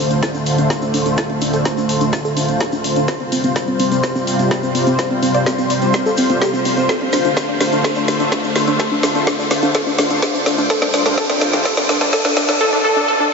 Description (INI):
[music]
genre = progressive house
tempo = 126 BPM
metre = 4/4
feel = straight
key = D minor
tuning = A4 = 440 Hz
[part]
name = lush unison pad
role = sustained chords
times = 0.0-12.6 s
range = C3 to C5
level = -19 LUFS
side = equal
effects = chorus, phaser, sidechain pumping
[part]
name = wide unison pluck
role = arpeggios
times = 0.0-13.3 s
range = C4 to D5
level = -19 LUFS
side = equal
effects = sidechain pumping, ping-pong delay
[part]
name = riser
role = sound effects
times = 0.2-12.6 s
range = none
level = -28 LUFS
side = equal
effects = none
[part]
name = deep house drum kit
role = drums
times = 0.1-12.6 s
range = hi-hat, snare drum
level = -20 LUFS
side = equal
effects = sidechain pumping on hats
[part]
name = tube shaker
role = percussion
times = 0.1-12.6 s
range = none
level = -31 LUFS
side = left 2 dB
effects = none
[part]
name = electronic kick drum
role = drums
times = 0.2-12.2 s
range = none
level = -27 LUFS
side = equal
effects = none
[sound]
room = wet huge ambient reverb, RT60 7.7 s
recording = dreamy mix soaked in reverb, high-pass filter, nothing above 7.7 kHz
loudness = -14 LUFS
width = side -4 dB against mid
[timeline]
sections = 0.0-13.3 A section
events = build-up 0.0-13.3; drum fill 0.0-12.6; filter sweep on synth pluck 0.0-13.3; filter sweep 0.0-13.3; riser 0.2-12.6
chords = 0.0 Dm7; 3.1 Csus4; 6.9 Dm7; 10.7 Csus4